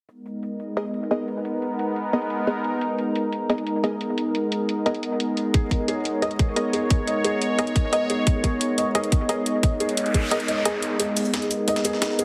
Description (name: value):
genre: dark technical drum and bass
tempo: 176 BPM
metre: 4/4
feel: straight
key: G# minor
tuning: A4 = 441 Hz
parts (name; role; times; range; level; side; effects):
- sweeping resonant pad; sustained chords; 0.1-12.2 s; G#3 to C#5; -29 LUFS; equal; chorus, sidechain pumping
- electronic hi-hat and shaker; drums; 0.1-12.2 s; none; -32 LUFS; equal; high-pass filter on hats, low-pass filter on hats, high-pass filter on perc, low-pass filter on perc
- warbly tape-like pad; texture; 0.1-12.2 s; B3 to A#5; -31 LUFS; equal; chorus, built-in reverb, sidechain pumping
- filtered dub chord stab; stabs; 0.8-12.2 s; B3 to D#5; -30 LUFS; equal; chorus, vintage 12-bit sampler grit, dub echo
- felt-muted upright piano; arpeggios; 5.5-12.2 s; G#4 to D#5; -32 LUFS; equal; sidechain pumping, low-pass filter, dub echo
- electronic kick drum; drums; 5.5-10.2 s; none; -23 LUFS; equal; none
- noise sweep; sound effects; 9.8-11.0 s; none; -34 LUFS; equal; none
- breakbeat sampler-style drum kit; drums; 11.0-12.2 s; hi-hat, snare drum; -32 LUFS; equal; high-pass filter on hats, high-pass filter on snare
room: moderate plate reverb, RT60 2.3 s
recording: heavily compressed radio sound, multiband compression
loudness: -24 LUFS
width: mono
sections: 0.1-11.0 A section; 11.0-12.2 B section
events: filter sweep on drum 0.1-11.0; filter sweep on synth stab 0.1-11.0; noise sweep 9.9-11.0; kick drops out 10.3-11.0; build-up 11.0-12.2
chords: 0.1 G#madd9